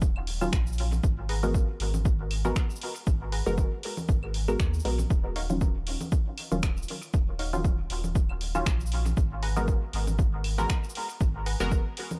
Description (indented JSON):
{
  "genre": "dub techno",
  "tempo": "118 BPM",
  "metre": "4/4",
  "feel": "swing 55% on 16ths",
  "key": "unclear",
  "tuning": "A4 = 440 Hz",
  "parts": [
    { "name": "warm sub bass", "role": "bass", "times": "0.0-11.8 s", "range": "Eb1 to Eb2", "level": "-32 LUFS", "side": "equal", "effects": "sidechain pumping" },
    { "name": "deep house drum kit", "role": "drums", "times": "0.0-12.2 s", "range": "finger snaps, hi-hat, shaker", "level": "-40 LUFS", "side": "equal", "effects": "none" },
    { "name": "electronic kick drum", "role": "drums", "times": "0.0-11.8 s", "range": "none", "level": "-28 LUFS", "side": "equal", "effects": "none" },
    { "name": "claves and congas", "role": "percussion", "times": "0.2-12.2 s", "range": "none", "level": "-42 LUFS", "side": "equal", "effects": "overdrive, sidechain pumping on perc, dub echo" },
    { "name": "filtered dub chord stab", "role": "stabs", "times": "0.4-11.8 s", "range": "Eb3 to Bb4", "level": "-36 LUFS", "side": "equal", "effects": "chorus, phaser, sidechain pumping, dub echo" },
    { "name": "wavetable chord stab", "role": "riff", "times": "1.3-11.6 s", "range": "Eb4 to Bb5", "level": "-44 LUFS", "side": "equal", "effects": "sidechain pumping, dub echo" }
  ],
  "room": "digital ambience",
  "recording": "dry, gritty hardware recording, cassette tape",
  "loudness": "-28 LUFS",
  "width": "mono",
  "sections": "0.0-12.2 A section",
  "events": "none",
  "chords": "0.0 Ebm9; 1.0 Abm9; 5.1 Ebm9; 9.2 Abm9"
}